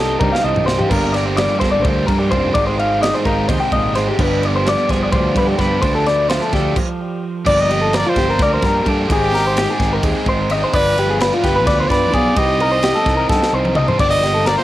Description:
math rock and midwest emo; 257 BPM (eighths); 7/8; straight; G minor; A4 = 439 Hz
twelve-string electric guitar; accompaniment; 0.0-8.4 s; G2 to C5; -23 LUFS; right 6 dB; cassette tape
electric guitar through a small old amp; arpeggios; 0.0-14.6 s; F4 to G5; -18 LUFS; left 2 dB; cassette tape, analog delay
biting overdriven guitar; riff; 0.0-14.6 s; G2 to F4; -23 LUFS; right 2 dB; cassette tape
fuzz fingered electric bass; bass; 0.0-14.6 s; F1 to G2; -21 LUFS; equal; overdrive
crisp fusion drum kit; drums; 0.2-14.6 s; crash cymbal, kick drum, ride cymbal, snare drum, toms; -22 LUFS; equal; cassette tape
clear trumpet; melody; 7.5-14.6 s; G4 to Eb5; -20 LUFS; right 2 dB; cassette tape, analog delay
small room ambience; home recording on cassette; -14 LUFS; side -14 dB against mid
0.0-7.5 A section; 7.5-14.6 B section
drum fill 0.0-0.9, 13.3-14.0; stop 6.8-7.5
0.0 Cm7; 0.9 Gm7; 2.6 Abmaj7; 4.2 G7b9; 5.8 Dm7; 7.5 Gm7; 9.1 Abmaj7; 10.7 G7b9; 12.4 Cm7; 14.0 Gm

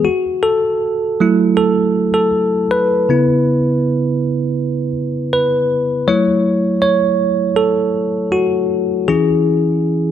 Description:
pop; 80 BPM; 4/4; straight; A4 = 440 Hz
bell-like tine electric piano; solo; 0.0-10.1 s; C#3 to C#5; -13 LUFS; moving between left 5 dB and right 5 dB; auto-pan
light reverb; dark, warm production; -13 LUFS; side -10 dB against mid
0.1-10.1 A section
tine electric piano solo 0.1-10.1
0.1 F#m7; 3.1 C#m7; 6.1 F#m7; 9.1 E6

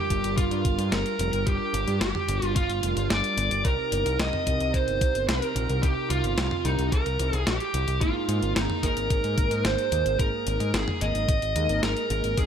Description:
synthwave; 110 BPM; 4/4; straight; A4 = 440 Hz
fuzz lead guitar; melody; 0.0-12.5 s; Eb4 to Eb5; -27 LUFS; right 2 dB; distortion, ping-pong delay
mellow synth brass; stabs; 0.0-12.5 s; Ab2 to C5; -33 LUFS; equal; chorus
overdriven picked electric bass; bass; 0.1-12.5 s; F1 to Ab2; -28 LUFS; equal; sidechain pumping
clean 12-bit digital drum machine; drums; 0.1-12.5 s; hi-hat, snare drum, toms; -31 LUFS; left 1 dB
electronic kick drum; drums; 0.1-12.5 s; -26 LUFS; equal
light reverb; -23 LUFS; side -8 dB against mid
0.0-12.5 A section
0.0 Gm7; 3.6 Cm7; 8.0 Absus2

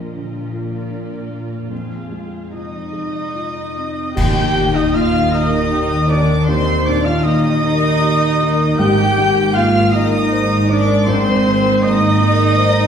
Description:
cinematic, emotional film score for orchestra; 48-54 BPM (dotted quarters); 6/8; rubato; A4 = 435 Hz
dark studio violin section; second line; 0.0-12.9 s; Ab4 to G5; -26 LUFS; left 1 dB
felt-muted upright piano; accompaniment; 0.0-12.9 s; Bb1 to C5; -22 LUFS; right 2 dB
rich studio viola section; accompaniment; 0.0-12.9 s; Bb3 to G4; -24 LUFS; right 1 dB
concert harp; arpeggios; 0.0-12.9 s; F2 to G5; -25 LUFS; left 4 dB
warm chamber cello section; bass; 0.0-12.9 s; F2 to Eb3; -21 LUFS; right 1 dB
cymbal swell, clash cymbals and concert bass drum; percussion; 1.7-5.7 s; -23 LUFS; equal
rich studio violin section; melody; 2.5-12.9 s; C6 to G6; -24 LUFS; left 1 dB
clear oboe; second line; 2.5-12.9 s; C5 to G5; -24 LUFS; equal
mellow flute section; second line; 2.5-12.9 s; C5 to G5; -24 LUFS; left 1 dB
mellow French horn section; sustained chords; 2.5-12.9 s; C4 to D5; -23 LUFS; left 2 dB
dark studio double bass section; bass; 4.2-12.9 s; Ab1 to Eb2; -23 LUFS; right 2 dB
wet recital hall reverb, RT60 1.4 s; recorded in a church or concert hall; -13 LUFS; side -8 dB against mid
0.0-4.2 A section; 4.2-12.9 B section
band accent 4.2-4.9
0.0 Bb; 1.7 Fm; 4.2 Eb; 8.8 Abadd9

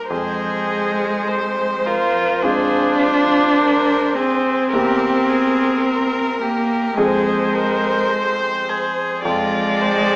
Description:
classical, slow romantic movement for piano quartet; 52 BPM; 4/4; rubato; A4 = 439 Hz
warm violin; melody; 0.0-10.2 s; F4 to C5; -24 LUFS; left 1 dB
warm concert grand piano; accompaniment; 0.0-10.2 s; E2 to Ab4; -23 LUFS; equal
warm viola; accompaniment; 0.0-10.2 s; Bb4 to D5; -22 LUFS; equal
warm cello; second line; 0.1-10.2 s; Ab3 to F4; -18 LUFS; equal
wet recital hall reverb, RT60 1.4 s; small speaker sound; -15 LUFS; side -26 dB against mid
0.0-10.2 A section
0.1 Fm; 4.7 C7/E; 7.0 Fm; 9.3 Ddim/F

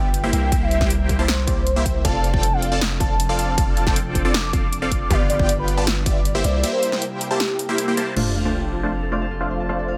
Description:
future bass; 157 BPM; 4/4; half-time; F major; A4 = 440 Hz
warm velvety synth lead; melody; 0.0-8.1 s; G4 to D6; -28 LUFS; equal; chorus, sidechain pumping, digital delay
airy breathy pad; sustained chords; 0.0-10.0 s; C3 to B4; -35 LUFS; equal; chorus, sidechain pumping
supersaw stab; riff; 0.0-10.0 s; A3 to A5; -27 LUFS; equal; phaser, sidechain pumping, low-pass filter
long sustained 808-style bass; bass; 0.0-10.0 s; F1 to C2; -26 LUFS; equal; tube saturation, sidechain pumping
big-room dance drum kit; drums; 0.1-8.2 s; crash cymbal, hi-hat, snare drum; -28 LUFS; equal
electronic kick drum; drums; 0.5-6.1 s; -25 LUFS; equal
Celtic harp; arpeggios; 8.2-10.0 s; D4 to A5; -34 LUFS; equal; sidechain pumping, low-pass filter, digital delay
sub drop; sound effects; 8.2-9.7 s; -31 LUFS; equal
little or no reverb; -20 LUFS; mono
0.0-8.2 A section; 8.2-10.0 B section
drop 0.0-8.2; impact 8.2-9.7
0.3 C7; 2.0 F6; 5.1 G7; 6.4 C7; 8.2 F6

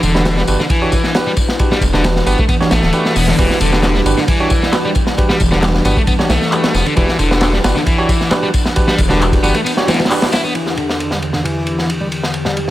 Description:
breakbeat, breaks; 134 BPM; 4/4; straight; E minor; A4 = 444 Hz
phased analog pad; sustained chords; 0.0-12.7 s; E2 to F#5; -21 LUFS; equal; phaser, chorus, sidechain pumping
overdriven electric guitar; riff; 0.0-12.7 s; D3 to E4; -19 LUFS; equal; low-pass filter, tape echo
phased detuned saw bass; bass; 0.0-9.5 s; D1 to B1; -17 LUFS; equal; phaser
crunchy breakbeat drum kit; drums; 0.0-12.7 s; hi-hat, kick drum, ride cymbal, snare drum; -16 LUFS; equal; high-pass filter on kick, high-pass filter on cymbals, high-pass filter on hats, high-pass filter on snare, high-pass filter on room
electronic tambourine and handclaps; drums; 0.0-10.5 s; -26 LUFS; left 2 dB; low-pass filter on perc, low-pass filter on snare
barky tine electric piano; stabs; 0.1-10.3 s; D4 to C#5; -20 LUFS; right 2 dB; low-pass filter, tape echo
small room ambience; -12 LUFS; side -15 dB against mid
0.0-10.6 A section; 10.6-12.7 B section
band accent 10.1; filter sweep on overdriven electric guitar 10.6-12.7
0.0 Em7

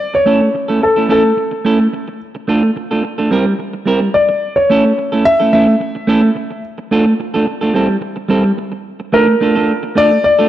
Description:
disco; 108 BPM; 4/4; straight; A4 = 442 Hz
warm concert grand piano; melody; 0.0-10.5 s; A4 to E5; -13 LUFS; left 1 dB
clean electric guitar; accompaniment; 0.1-10.5 s; G3 to Bb4; -14 LUFS; right 2 dB; spring reverb
light reverb, small room ambience; dark, warm production; -11 LUFS; side -12 dB against mid
0.3-9.1 A section; 9.1-10.5 B section
0.3 A; 2.5 Dm; 3.3 C7; 4.7 A; 6.9 Dm; 7.7 Am7; 9.1 Bbmaj7

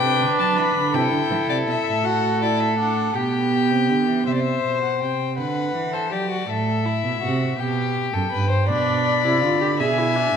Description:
classical, baroque-style fugue for string quartet; 54 BPM (dotted quarters); 6/8; straight; A4 = 440 Hz
rich violin; melody; 0.0-10.4 s; C5 to B5; -25 LUFS; left 9 dB
dark violin; second line; 0.0-10.4 s; E4 to E5; -24 LUFS; left 2 dB
rich viola; accompaniment; 0.0-4.2, 8.7-10.4 s; B3 to G#4; -23 LUFS; right 4 dB
dark cello; bass; 0.0-10.3 s; F#2 to F#3; -24 LUFS; right 4 dB
wet recital hall reverb, RT60 1.8 s; minimal, uncompressed stereo recording; -19 LUFS; side -7 dB against mid
0.0-4.3 A section; 4.3-10.4 B section
0.0 G; 0.9 Am7/C; 2.0 D/A; 3.1 G/B; 4.3 C; 5.4 Bm/D; 6.5 Am; 7.6 G/B; 8.7 Bdim; 9.8 E7/B

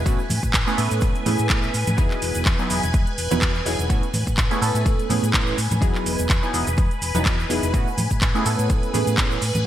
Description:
filtered disco house; 125 BPM; 4/4; swing 55% on 16ths; A4 = 439 Hz
funky polysynth comp; accompaniment; 0.0-9.4 s; F#3 to B4; -26 LUFS; right 2 dB; chorus, phaser, sidechain pumping
phased string machine; sustained chords; 0.0-9.7 s; B4 to G#5; -29 LUFS; equal; ensemble chorus, phaser, sidechain pumping
hollow-body short-scale fingered electric bass; bass; 0.0-9.6 s; E1 to A2; -25 LUFS; equal; sidechain pumping
electronic kick drum; drums; 0.1-9.3 s; -21 LUFS; equal
house drum kit; drums; 0.1-9.6 s; handclaps, hi-hat, shaker; -26 LUFS; right 1 dB; sidechain pumping on hats, sidechain pumping on cymbals, sidechain pumping on perc, gated reverb
tube shaker and congas; percussion; 0.1-9.6 s; -31 LUFS; equal; sidechain pumping on perc
light reverb; bright 1980s-style digital production; -18 LUFS; side -12 dB against mid
0.0-9.7 A section
0.1 Amaj7; 2.0 Emaj7; 3.9 Amaj7; 5.8 Emaj7; 7.7 Amaj7

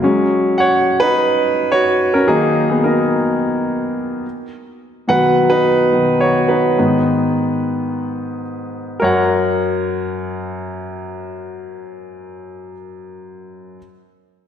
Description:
pop; 107 BPM; 4/4; straight; F# major; A4 = 440 Hz
clear baby grand piano; solo; 0.0-13.8 s; F#2 to F#5; -15 LUFS; equal
wet lush hall reverb, RT60 1.9 s, small room ambience; dreamy mix soaked in reverb; -14 LUFS; side -9 dB against mid
0.0-9.0 A section; 9.0-11.3 B section
grand piano solo 0.0-9.0
0.0 F#sus2; 2.3 D#m; 4.2 B; 6.8 G#m; 9.0 F#

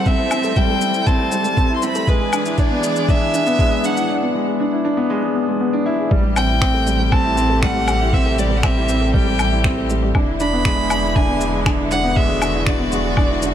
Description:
piano and strings electronica; 119 BPM; 4/4; straight; A dorian; A4 = 440 Hz
warm violin; melody; 0.0-13.5 s; B4 to C6; -22 LUFS; equal; ping-pong delay
bright studio string section; sustained chords; 0.0-13.5 s; C3 to A4; -26 LUFS; left 2 dB
dark grand piano; riff; 0.0-13.5 s; G3 to G#4; -20 LUFS; equal; ping-pong delay
electronic kick drum; drums; 0.1-13.3 s; -18 LUFS; equal
electronic shaker, woodblock and finger snaps; drums; 0.1-13.5 s; -25 LUFS; left 2 dB
warm sub bass; bass; 6.1-13.5 s; E1 to A1; -22 LUFS; equal; sidechain pumping
light reverb; -15 LUFS; side -10 dB against mid
0.0-6.1 A section; 6.1-13.5 B section
build-up 0.0-6.1; break 4.1-6.1; drop 6.1-13.5
0.0 Am7; 2.1 E7; 6.1 Am7; 10.1 E7

